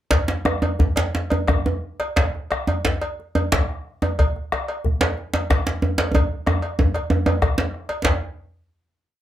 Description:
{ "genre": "west african traditional, West African drum ensemble", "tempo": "116-133 BPM (dotted quarters)", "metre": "12/8", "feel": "straight", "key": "none", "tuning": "none", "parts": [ { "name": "bombo", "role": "percussion", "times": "0.1-8.2 s", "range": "none", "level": "-23 LUFS", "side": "equal", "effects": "none" }, { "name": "cowbell", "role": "percussion", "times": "0.1-8.2 s", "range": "none", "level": "-27 LUFS", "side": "equal", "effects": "none" }, { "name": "djembe", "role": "percussion", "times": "0.1-8.2 s", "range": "none", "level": "-26 LUFS", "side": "left 3 dB", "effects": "none" }, { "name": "djembe", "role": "percussion", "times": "0.1-8.2 s", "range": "none", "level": "-21 LUFS", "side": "right 1 dB", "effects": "none" } ], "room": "moderate small room reverb, RT60 0.5 s", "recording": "none", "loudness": "-19 LUFS", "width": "side -12 dB against mid", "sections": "0.1-8.0 A section; 8.0-9.2 final hit", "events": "speeding up 0.1-9.2; drum fill 6.2-8.0", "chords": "none", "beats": "| 0.11 0.62 1.14 1.65 | 2.17 2.68 3.18 3.69 | 4.19 4.68 5.18 5.67 | 6.15 6.63 7.11 7.58 | 8.04" }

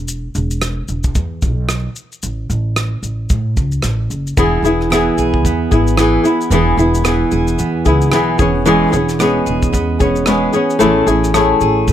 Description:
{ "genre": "acoustic pop", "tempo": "112 BPM", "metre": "4/4", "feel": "swing 60% on 16ths", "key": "unclear", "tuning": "A4 = 439 Hz", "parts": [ { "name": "upright bass", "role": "bass", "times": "0.0-11.9 s", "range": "E1 to A2", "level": "-18 LUFS", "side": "equal", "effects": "none" }, { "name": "soft brush drum kit", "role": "drums", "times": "0.1-11.9 s", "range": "kick drum, rim click, shaker", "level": "-20 LUFS", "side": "equal", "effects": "none" }, { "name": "flamenco guitar", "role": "accompaniment", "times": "4.4-11.9 s", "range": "E3 to G#4", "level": "-14 LUFS", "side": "left 2 dB", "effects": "none" }, { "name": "picked steel-string acoustic guitar", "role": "arpeggios", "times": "4.4-11.9 s", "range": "E3 to G#4", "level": "-19 LUFS", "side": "right 7 dB", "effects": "none" } ], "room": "little or no reverb", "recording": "close, detailed microphones", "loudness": "-12 LUFS", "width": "side -10 dB against mid", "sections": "0.0-11.9 A section", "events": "none", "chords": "0.0 E5; 2.2 N.C.; 4.4 C#m7/E; 10.8 Amaj7", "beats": "| 0.08 0.62 1.16 1.69 | 2.23 2.77 3.30 3.84 | 4.38 4.91 5.45 5.99 | 6.52 7.06 7.59 8.13 | 8.67 9.20 9.74 10.27 | 10.81 11.35 11.88" }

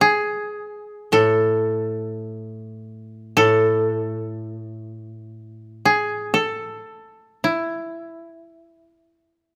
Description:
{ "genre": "japanese traditional, Japanese chamber music", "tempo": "free time", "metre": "none", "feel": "none", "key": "unclear", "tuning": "A4 = 442 Hz", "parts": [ { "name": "koto", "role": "melody", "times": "0.0-9.6 s", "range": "E4 to B4", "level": "-23 LUFS", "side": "equal", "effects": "none" }, { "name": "koto", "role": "accompaniment", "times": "1.1-6.8 s", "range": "A2", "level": "-24 LUFS", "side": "equal", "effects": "none" } ], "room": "light reverb", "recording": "close, detailed microphones", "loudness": "-21 LUFS", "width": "mono", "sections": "0.0-9.6 A section", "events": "slowing down 1.9-9.6", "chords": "none", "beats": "free time" }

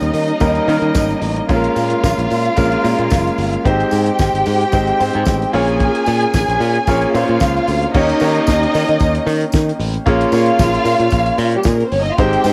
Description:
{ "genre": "disco", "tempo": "112 BPM", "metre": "4/4", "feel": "straight", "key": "unclear", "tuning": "A4 = 438 Hz", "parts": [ { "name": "dark studio string section", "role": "second line", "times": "0.0-12.5 s", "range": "G3 to Ab5", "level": "-20 LUFS", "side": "equal", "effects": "cassette tape" }, { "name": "clear grand piano", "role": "accompaniment", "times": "0.0-12.5 s", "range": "G3 to Db5", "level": "-21 LUFS", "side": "equal", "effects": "cassette tape" }, { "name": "modern bright fingered electric bass", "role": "bass", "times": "0.0-12.5 s", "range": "Gb1 to Eb3", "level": "-21 LUFS", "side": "equal", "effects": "none" }, { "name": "damped 70s drum kit", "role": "drums", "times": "0.0-12.5 s", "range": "crash cymbal, hi-hat, kick drum, snare drum", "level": "-23 LUFS", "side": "equal", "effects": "none" }, { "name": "tambourine", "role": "percussion", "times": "0.1-12.5 s", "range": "none", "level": "-38 LUFS", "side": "equal", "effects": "none" } ], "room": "little or no reverb", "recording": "home recording on cassette", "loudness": "-15 LUFS", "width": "mono", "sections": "0.0-7.9 A section; 7.9-12.5 B section", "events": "none", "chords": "0.0 Eb7; 1.5 Bbm7; 3.7 Abmaj7; 5.5 Bbm7; 7.9 Eb7; 10.1 Bbm7", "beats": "0.41 0.95 | 1.49 2.03 2.57 3.11 | 3.65 4.19 4.73 5.27 | 5.80 6.34 6.88 7.41 | 7.94 8.47 9.01 9.54 | 10.07 10.60 11.13 11.66 | 12.19" }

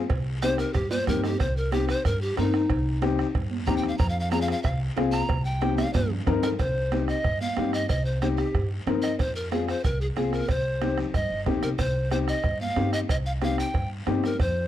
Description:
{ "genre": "latin, cumbia", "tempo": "185 BPM", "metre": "4/4", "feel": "straight", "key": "C minor", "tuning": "A4 = 440 Hz", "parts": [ { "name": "upright bass", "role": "bass", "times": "0.0-14.7 s", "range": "G1 to G2", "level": "-29 LUFS", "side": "equal", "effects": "none" }, { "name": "bombo", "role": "percussion", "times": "0.1-14.6 s", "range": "none", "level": "-29 LUFS", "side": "right 2 dB", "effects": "none" }, { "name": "congas", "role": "percussion", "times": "0.1-14.6 s", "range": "none", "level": "-34 LUFS", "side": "right 7 dB", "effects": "none" }, { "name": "cowbell and timbales", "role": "percussion", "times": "0.1-14.6 s", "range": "none", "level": "-37 LUFS", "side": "right 5 dB", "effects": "none" }, { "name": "guiro", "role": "percussion", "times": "0.1-14.7 s", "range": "none", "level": "-46 LUFS", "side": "left 3 dB", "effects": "none" }, { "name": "bright polished pan flute", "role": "melody", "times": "0.4-14.7 s", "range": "Eb4 to Bb5", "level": "-29 LUFS", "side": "equal", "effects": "none" }, { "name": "dark upright piano", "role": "accompaniment", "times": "0.4-14.3 s", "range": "C4 to Bb4", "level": "-29 LUFS", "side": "left 7 dB", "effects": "none" } ], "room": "studio ambience", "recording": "dry, close 1970s-style studio recording", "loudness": "-23 LUFS", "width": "side -12 dB against mid", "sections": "0.0-6.6 A section; 6.6-14.7 B section", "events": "pan flute solo 0.0-6.6; drum fill 0.9-1.4, 5.6-6.6", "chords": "0.1 Cm; 4.0 Fm; 5.3 Cm; 9.2 Fm; 10.5 Cm", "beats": "| 0.10 0.43 0.75 1.08 | 1.40 1.73 2.05 2.38 | 2.70 3.02 3.35 3.67 | 4.00 4.32 4.65 4.97 | 5.29 5.62 5.94 6.27 | 6.59 6.92 7.24 7.57 | 7.89 8.22 8.54 8.87 | 9.19 9.52 9.84 10.17 | 10.49 10.82 11.14 11.47 | 11.79 12.12 12.44 12.77 | 13.09 13.42 13.74 14.07 | 14.39" }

